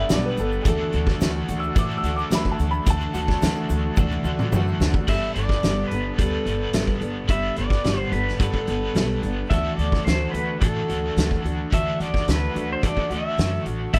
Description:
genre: folk rock and heartland rock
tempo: 108 BPM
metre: 4/4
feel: straight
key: G major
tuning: A4 = 440 Hz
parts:
  - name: clear upright piano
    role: second line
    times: 0.0-4.0 s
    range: Ab4 to E6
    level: -30 LUFS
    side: equal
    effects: none
  - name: picked steel-string acoustic guitar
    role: accompaniment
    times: 0.0-14.0 s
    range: D3 to A4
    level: -31 LUFS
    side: equal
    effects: none
  - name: tonewheel organ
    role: sustained chords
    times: 0.0-5.1 s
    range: A4 to D6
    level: -42 LUFS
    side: equal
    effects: none
  - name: overdriven electric guitar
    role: riff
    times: 0.0-14.0 s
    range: D3 to B4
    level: -34 LUFS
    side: equal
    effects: harmonic tremolo
  - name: upright bass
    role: bass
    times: 0.1-14.0 s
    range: G1 to A2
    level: -29 LUFS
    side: equal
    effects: none
  - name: loose indie drum kit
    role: drums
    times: 0.1-14.0 s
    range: crash cymbal, hi-hat, kick drum, snare drum, toms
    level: -26 LUFS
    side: equal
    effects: none
  - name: egg shaker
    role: percussion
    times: 0.1-4.9 s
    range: none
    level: -49 LUFS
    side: equal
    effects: none
  - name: pedal steel guitar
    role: melody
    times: 5.1-14.0 s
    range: A4 to E5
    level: -30 LUFS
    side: equal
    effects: none
room: little or no reverb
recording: none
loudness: -23 LUFS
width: mono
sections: 0.0-5.1 A section; 5.1-14.0 B section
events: upright piano solo 0.0-5.1; drum fill 4.0-5.1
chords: 0.0 Gadd9; 0.7 Dadd9; 5.1 Gadd9; 9.5 Dadd9

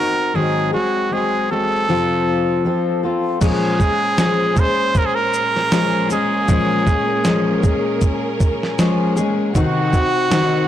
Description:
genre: acoustic pop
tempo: 78 BPM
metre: 4/4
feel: swing 60% on 16ths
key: Bb minor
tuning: A4 = 438 Hz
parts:
  - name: brilliant trumpet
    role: melody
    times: 0.0-10.7 s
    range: Gb4 to C5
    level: -20 LUFS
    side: right 2 dB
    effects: none
  - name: fingerpicked steel-string acoustic guitar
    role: accompaniment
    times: 0.0-10.7 s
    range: F2 to A4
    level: -19 LUFS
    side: left 2 dB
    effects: none
  - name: clear studio string section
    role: sustained chords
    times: 3.4-10.7 s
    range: Bb2 to Gb5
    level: -27 LUFS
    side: right 2 dB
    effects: none
  - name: dusty soul sampler-style drum kit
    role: drums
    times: 3.4-10.5 s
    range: crash cymbal, kick drum, shaker, snare drum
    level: -19 LUFS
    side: right 1 dB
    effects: none
room: light reverb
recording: blown-out, overdriven recording, overdrive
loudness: -15 LUFS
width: side -11 dB against mid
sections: 0.0-3.4 A section; 3.4-10.7 B section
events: none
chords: 0.3 Ab7; 1.9 F; 3.4 Bbm7; 9.6 Cdim

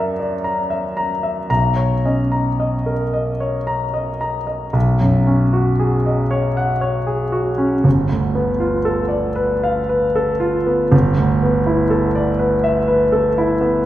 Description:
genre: classical, impressionist solo piano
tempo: 57 BPM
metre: 3/4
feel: uneven beats, rubato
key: unclear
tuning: A4 = 439 Hz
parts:
  - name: clear concert grand piano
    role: solo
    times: 0.0-13.9 s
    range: G1 to A#5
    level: -15 LUFS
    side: equal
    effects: none
room: wet recital hall reverb, RT60 1.4 s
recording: heard from further back in the room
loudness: -15 LUFS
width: side -13 dB against mid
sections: 0.0-4.7 A section; 4.7-13.9 B section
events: none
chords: 0.0 F#aug7; 1.5 Bmaj9; 4.7 B69; 7.9 G9; 10.9 G69

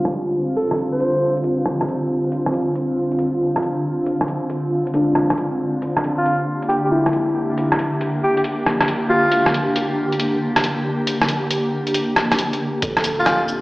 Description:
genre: future garage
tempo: 137 BPM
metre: 4/4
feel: swing 67% on 16ths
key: D minor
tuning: A4 = 440 Hz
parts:
  - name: felt-muted upright piano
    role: accompaniment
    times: 0.0-13.6 s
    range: G3 to A4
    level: -26 LUFS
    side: left 1 dB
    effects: sidechain pumping, tape echo
  - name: granular cloud pad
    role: sustained chords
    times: 0.0-13.6 s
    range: D3 to G4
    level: -21 LUFS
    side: equal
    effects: built-in reverb, sidechain pumping
  - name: lo-fi sampler-style drum kit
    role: drums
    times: 0.1-13.6 s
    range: cabasa, hi-hat, rim click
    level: -22 LUFS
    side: equal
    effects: none
  - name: edgy alto saxophone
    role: melody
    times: 0.6-1.4, 6.2-9.5, 13.2-13.4 s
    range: F4 to C5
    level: -22 LUFS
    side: equal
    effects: tape echo
  - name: warm sub bass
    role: bass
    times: 12.8-13.6 s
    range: D1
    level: -40 LUFS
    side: equal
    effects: sidechain pumping
  - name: electronic kick drum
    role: drums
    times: 12.8-12.9 s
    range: none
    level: -28 LUFS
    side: equal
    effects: none
room: wet lush hall reverb, RT60 2.0 s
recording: played on a big sound system in a bare room, large studio reverb, low-pass filter, small speaker sound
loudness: -17 LUFS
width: side -20 dB against mid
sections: 0.0-12.8 A section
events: filter sweep 0.0-12.8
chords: 0.0 Dm7; 5.8 Gm/D; 12.8 Dm7

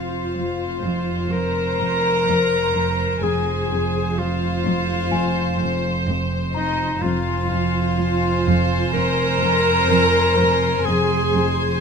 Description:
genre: cinematic, suspense film score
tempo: 63 BPM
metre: 4/4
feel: straight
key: F minor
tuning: A4 = 441 Hz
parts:
  - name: warm studio violin section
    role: melody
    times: 0.0-11.8 s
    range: C5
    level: -28 LUFS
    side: left 2 dB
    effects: none
  - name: bright clarinet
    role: second line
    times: 0.0-11.8 s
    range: Eb4 to Bb4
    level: -24 LUFS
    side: left 2 dB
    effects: none
  - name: rich studio violin section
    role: second line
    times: 0.0-11.8 s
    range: Eb5 to Bb5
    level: -26 LUFS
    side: equal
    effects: none
  - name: dark chamber viola section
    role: accompaniment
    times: 0.0-11.8 s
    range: Eb4 to Bb4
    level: -27 LUFS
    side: equal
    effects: none
  - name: warm studio cello section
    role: riff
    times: 0.0-11.6 s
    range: F2 to F3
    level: -26 LUFS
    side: right 1 dB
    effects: none
  - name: dark studio double bass section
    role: bass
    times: 0.0-11.8 s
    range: F1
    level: -27 LUFS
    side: right 3 dB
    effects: none
  - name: warm studio cello section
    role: bass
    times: 0.0-11.8 s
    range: F2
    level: -26 LUFS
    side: right 2 dB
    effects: none
  - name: small celesta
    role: texture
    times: 0.0-11.8 s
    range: C5 to C6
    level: -32 LUFS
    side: left 8 dB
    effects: none
  - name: dark chamber violin section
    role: texture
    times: 7.0-11.8 s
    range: Ab5 to C6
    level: -30 LUFS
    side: left 1 dB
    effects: none
room: light reverb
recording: close, detailed microphones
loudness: -18 LUFS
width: side -6 dB against mid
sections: 0.0-11.8 A section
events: none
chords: 0.0 Fm

